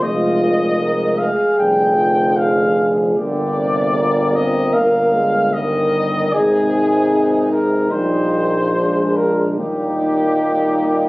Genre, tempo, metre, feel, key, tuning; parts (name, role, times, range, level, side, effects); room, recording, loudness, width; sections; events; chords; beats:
classical, hymn-like piece for brass band; 75 BPM; 4/4; uneven beats, rubato; Eb major; A4 = 440 Hz
mellow cornet; melody; 0.0-11.1 s; G4 to G5; -19 LUFS; equal
mellow French horn section; second line; 0.0-11.1 s; D4 to Bb4; -20 LUFS; right 1 dB
clear trombone; accompaniment; 0.0-11.1 s; Bb2 to Eb3; -25 LUFS; equal
warm euphonium; accompaniment; 0.0-11.1 s; F3 to C4; -24 LUFS; left 1 dB
warm tuba; bass; 0.0-11.1 s; F1 to Eb2; -21 LUFS; equal
moderate recital hall reverb, RT60 1.7 s; recorded on a phone in the room, club reverb, compression; -14 LUFS; side -20 dB against mid
0.0-11.1 A section
0.0 Fm; 1.6 Ddim/F; 3.2 Gm; 4.7 Eb/G; 6.3 Ab; 7.9 Eb/Bb; 8.7 Bb7; 9.6 Eb
| 0.03 0.79 1.58 2.38 | 3.17 3.96 4.75 5.54 | 6.33 7.12 7.92 8.74 | 9.59 10.45